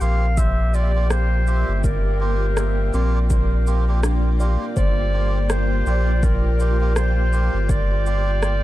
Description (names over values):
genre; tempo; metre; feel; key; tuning
ambient dub; 82 BPM; 4/4; swing 58% on 16ths; G dorian; A4 = 439 Hz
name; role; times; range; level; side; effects
mellow clarinet; melody; 0.0-8.6 s; Bb4 to F5; -27 LUFS; right 1 dB; dub echo
granular cloud pad; sustained chords; 0.0-8.6 s; Bb3 to G5; -30 LUFS; left 1 dB; built-in reverb
kalimba; arpeggios; 0.0-8.3 s; C4 to E6; -36 LUFS; left 1 dB; none
melodica; stabs; 0.0-8.3 s; Bb3 to G4; -32 LUFS; right 4 dB; dub echo
warm sub bass; bass; 0.0-8.6 s; G1 to Bb1; -19 LUFS; equal; none
electronic shaker and rim click; drums; 0.0-8.6 s; none; -28 LUFS; right 1 dB; none
electronic kick drum; drums; 0.4-7.9 s; none; -22 LUFS; equal; none
room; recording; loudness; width
little or no reverb; dark, warm production; -17 LUFS; side -15 dB against mid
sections
0.0-8.6 A section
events
none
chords
0.0 Gm7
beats
0.38 1.11 | 1.84 2.57 3.30 4.03 | 4.76 5.50 6.23 6.96 | 7.69 8.42